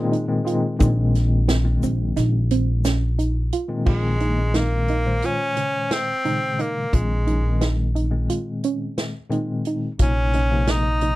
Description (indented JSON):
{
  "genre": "progressive instrumental, band music in an uneven meter",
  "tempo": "176 BPM (eighths)",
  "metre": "9/8",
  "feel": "straight",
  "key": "Bb minor",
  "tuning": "A4 = 439 Hz",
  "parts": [
    { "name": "electric guitar at the edge of break-up", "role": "second line", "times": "0.0-3.5 s", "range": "Ab3", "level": "-45 LUFS", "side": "right 4 dB", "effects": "none" },
    { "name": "tine electric piano", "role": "accompaniment", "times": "0.0-11.1 s", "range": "Bb2 to C5", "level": "-25 LUFS", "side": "left 2 dB", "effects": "medium tremolo" },
    { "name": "soft round pluck", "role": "arpeggios", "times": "0.1-11.2 s", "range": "Db3 to F4", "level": "-28 LUFS", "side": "right 5 dB", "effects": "chorus" },
    { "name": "unplugged drum kit", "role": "drums", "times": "0.1-11.2 s", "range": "crash cymbal, hi-hat, kick drum, snare drum", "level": "-24 LUFS", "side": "equal", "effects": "none" },
    { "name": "tube shaker", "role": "percussion", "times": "0.5-3.4 s", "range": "none", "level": "-40 LUFS", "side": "left 9 dB", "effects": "none" },
    { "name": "upright bass", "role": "bass", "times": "0.8-11.2 s", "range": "Bb1", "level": "-21 LUFS", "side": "equal", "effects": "none" },
    { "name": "edgy tenor saxophone", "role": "melody", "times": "3.9-11.2 s", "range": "Ab3 to Eb4", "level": "-24 LUFS", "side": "equal", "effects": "none" }
  ],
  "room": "little or no reverb",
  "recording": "dry, close 1970s-style studio recording",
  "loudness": "-19 LUFS",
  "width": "side -17 dB against mid",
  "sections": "0.0-3.9 A section; 3.9-11.2 B section",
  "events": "none",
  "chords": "0.0 Bbm7; 10.0 Dbadd9/Bb"
}